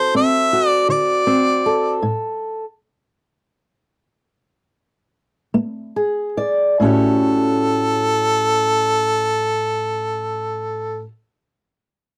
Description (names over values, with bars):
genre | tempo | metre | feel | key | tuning
acoustic country blues, solo or duo | 47-54 BPM (dotted quarters) | 12/8 | straight | A mixolydian | A4 = 440 Hz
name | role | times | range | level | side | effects
warm harmonica | melody | 0.0-11.0 s | A4 to E5 | -20 LUFS | equal | none
fingerpicked old ladder-braced acoustic guitar | accompaniment | 0.0-11.1 s | A2 to D5 | -22 LUFS | equal | none
room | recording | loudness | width
little or no reverb | dry, close 1970s-style studio recording | -19 LUFS | mono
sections
0.0-6.8 A section; 6.8-11.9 B section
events
slowing down 0.5-6.8; stop 2.0-5.5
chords
0.0 D7; 2.0 N.C.; 5.5 Bb7; 6.8 A6